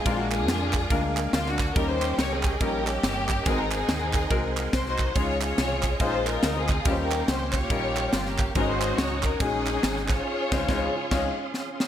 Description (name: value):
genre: uptempo gospel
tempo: 141 BPM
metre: 4/4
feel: swing 61% on 8ths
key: Db major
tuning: A4 = 437 Hz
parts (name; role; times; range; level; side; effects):
- warm studio string section; melody; 0.0-11.8 s; Ab3 to Db5; -28 LUFS; left 1 dB; none
- bright tonewheel organ; sustained chords; 0.0-11.9 s; Db4 to Eb6; -37 LUFS; right 4 dB; slow rotary speaker, overdrive, chorus vibrato
- clear grand piano; accompaniment; 0.1-11.3 s; Ab2 to C6; -31 LUFS; left 4 dB; none
- deep dub fingered electric bass; bass; 0.1-11.3 s; G1 to F2; -31 LUFS; right 1 dB; none
- crisp fusion drum kit; drums; 0.1-11.9 s; crash cymbal, kick drum, ride cymbal, snare drum; -28 LUFS; equal; none
- group handclap; percussion; 0.3-10.2 s; none; -34 LUFS; right 6 dB; none
room: light reverb, studio reverb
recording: none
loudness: -23 LUFS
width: side -10 dB against mid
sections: 0.0-11.9 A section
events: band accent 10.3-11.9; grand piano fill 11.1-11.9; drum fill 11.5-11.9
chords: 0.1 Bb7; 1.8 Eb7; 3.5 Ab9; 5.2 Dbmaj9; 6.9 Eb13; 8.6 Ab7sus4; 10.3 Dbmaj9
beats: | 0.06 0.48 0.91 1.33 | 1.76 2.19 2.61 3.04 | 3.46 3.88 4.31 4.73 | 5.16 5.58 6.01 6.43 | 6.86 7.28 7.70 8.13 | 8.55 8.98 9.40 9.83 | 10.26 10.68 11.11 11.54